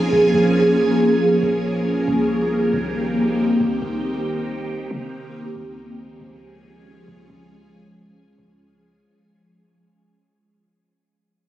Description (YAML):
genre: hip hop, atmospheric cloud-rap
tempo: 138 BPM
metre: 4/4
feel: half-time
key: unclear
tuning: A4 = 441 Hz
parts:
  - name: ethereal airy pad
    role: sustained chords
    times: 0.0-9.0 s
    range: Eb3 to Ab4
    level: -18 LUFS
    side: equal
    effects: ensemble chorus, built-in reverb, phaser
  - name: clean 808-style bass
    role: bass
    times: 0.0-9.0 s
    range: Bb1 to C3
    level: -30 LUFS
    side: right 1 dB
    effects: none
room: moderate huge ambient reverb, RT60 7.0 s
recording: recorded on a phone in the room, club reverb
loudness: -17 LUFS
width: side -13 dB against mid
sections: 0.0-9.0 A section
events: fade-out 0.0-9.0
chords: 0.0 Bbm7; 2.1 Cm7; 5.6 Db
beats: | 0.34 0.78 1.21 1.65 | 2.08 2.52 2.95 3.39 | 3.82 4.26 4.69 5.12 | 5.56 6.00 6.43 6.86 | 7.30 7.73 8.17 8.60